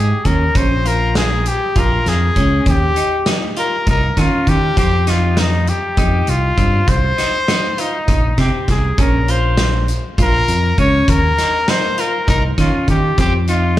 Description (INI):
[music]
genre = progressive instrumental, band music in an uneven meter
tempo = 200 BPM (eighths)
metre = 7/8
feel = straight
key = Bb dorian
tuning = A4 = 440 Hz
[part]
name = clear trumpet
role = melody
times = 0.0-13.8 s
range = Eb4 to Db5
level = -18 LUFS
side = left 2 dB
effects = slapback echo, ping-pong delay
[part]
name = clean electric guitar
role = arpeggios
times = 0.0-13.8 s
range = C4 to F4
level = -23 LUFS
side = equal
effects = wide subtle chorus, slapback echo
[part]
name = fingered electric bass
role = bass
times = 0.0-13.8 s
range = Bb1 to Eb3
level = -16 LUFS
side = equal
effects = none
[part]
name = loose indie drum kit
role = drums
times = 0.2-13.8 s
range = hi-hat, kick drum, snare drum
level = -19 LUFS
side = equal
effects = none
[sound]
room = light reverb, studio reverb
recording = live gig heard through the venue's PA, club reverb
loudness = -13 LUFS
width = side -14 dB against mid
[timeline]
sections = 0.6-13.8 A section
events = none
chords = 0.0 Ab5; 0.6 Bbm; 2.7 Eb; 4.8 F5; 6.9 Cm; 9.0 Bbm; 11.1 Eb5; 13.2 F5